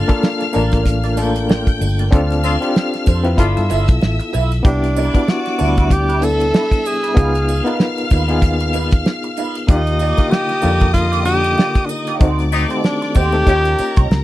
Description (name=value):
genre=lush 1970s-style soul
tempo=95 BPM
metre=4/4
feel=swing 58% on 16ths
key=unclear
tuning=A4 = 436 Hz
part: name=clear studio string section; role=second line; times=0.0-14.2 s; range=Bb4 to G6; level=-26 LUFS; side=left 3 dB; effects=none
part: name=overdriven reed electric piano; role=accompaniment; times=0.0-14.2 s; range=D3 to B4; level=-21 LUFS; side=left 2 dB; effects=fast tremolo
part: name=electric guitar at the edge of break-up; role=riff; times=0.0-14.2 s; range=D4 to E5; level=-26 LUFS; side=right 9 dB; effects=wah
part: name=vintage muted fingered electric bass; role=bass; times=0.0-14.2 s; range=G1 to G2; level=-18 LUFS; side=equal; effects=none
part: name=damped 70s drum kit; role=drums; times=0.1-14.2 s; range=hi-hat, kick drum, snare drum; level=-14 LUFS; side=equal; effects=none
part: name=triangle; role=percussion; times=0.1-14.2 s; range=none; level=-37 LUFS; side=right 20 dB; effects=none
part: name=warm horn section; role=stabs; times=2.4-3.9, 12.5-13.9 s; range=A3 to G4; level=-22 LUFS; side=left 3 dB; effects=none
part: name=mellow tenor saxophone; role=melody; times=4.7-14.1 s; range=D4 to A4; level=-19 LUFS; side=equal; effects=none
room=little or no reverb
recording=dry, close 1970s-style studio recording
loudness=-14 LUFS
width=side -15 dB against mid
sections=0.0-14.2 A section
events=band accent 2.1-4.6, 12.2-14.2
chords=0.0 Gm7; 2.1 Dm7; 3.4 G13; 4.6 Cmaj9; 7.2 C#9; 9.7 Ebmaj9; 12.2 D7b9; 13.5 Eb7